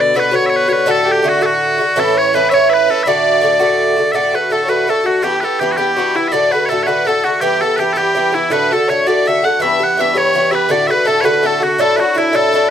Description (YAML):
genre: celtic folk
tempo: 110 BPM (dotted quarters)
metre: 6/8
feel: straight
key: D major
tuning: A4 = 440 Hz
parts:
  - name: loud bright bagpipes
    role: melody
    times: 0.0-12.7 s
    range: E4 to F#5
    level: -16 LUFS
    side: equal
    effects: none
  - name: warm fiddle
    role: second line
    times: 0.0-12.7 s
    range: E4 to F#5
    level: -18 LUFS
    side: left 4 dB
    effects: none
  - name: Irish bouzouki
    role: accompaniment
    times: 0.0-12.7 s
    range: G2 to G4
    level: -16 LUFS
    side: right 1 dB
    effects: none
room: light reverb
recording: close, detailed microphones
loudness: -12 LUFS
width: side -9 dB against mid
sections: 0.0-4.1 A section; 4.1-12.7 B section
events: none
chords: 0.0 Bm; 0.9 D; 2.0 A; 3.1 D; 5.2 Em; 6.3 D; 7.4 Em; 8.5 D; 9.6 Em; 10.7 D; 11.8 Dadd9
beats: 0.33 | 0.87 1.42 | 1.96 2.51 | 3.05 3.60 | 4.14 4.69 | 5.24 5.78 | 6.33 6.88 | 7.42 7.97 | 8.52 9.06 | 9.61 10.16 | 10.70 11.25 | 11.79 12.33